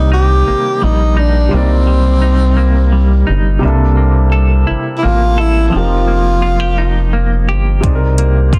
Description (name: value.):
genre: slow six-eight R&B.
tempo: 57 BPM (dotted quarters).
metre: 6/8.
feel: straight.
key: C minor.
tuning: A4 = 440 Hz.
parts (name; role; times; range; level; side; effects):
breathy tenor saxophone; melody; 0.0-7.1 s; C4 to G4; -19 LUFS; equal; none.
semi-hollow electric guitar; second line; 0.0-8.6 s; C3 to A4; -22 LUFS; equal; tremolo.
warm grand piano; accompaniment; 0.0-8.6 s; C3 to E5; -22 LUFS; equal; none.
rubbery square bass; bass; 0.0-8.6 s; F1 to C2; -14 LUFS; equal; none.
smooth R&B drum kit; drums; 7.8-8.6 s; hi-hat, kick drum; -15 LUFS; equal; none.
room: little or no reverb.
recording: dense, heavily limited modern master.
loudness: -12 LUFS.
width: mono.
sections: 0.0-8.6 A section.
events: none.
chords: 0.0 Cm7; 3.6 C13; 5.7 F9sus4; 7.8 Cm7.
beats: 0.47 | 1.52 2.57 | 3.62 4.68 | 5.73 6.78 | 7.83.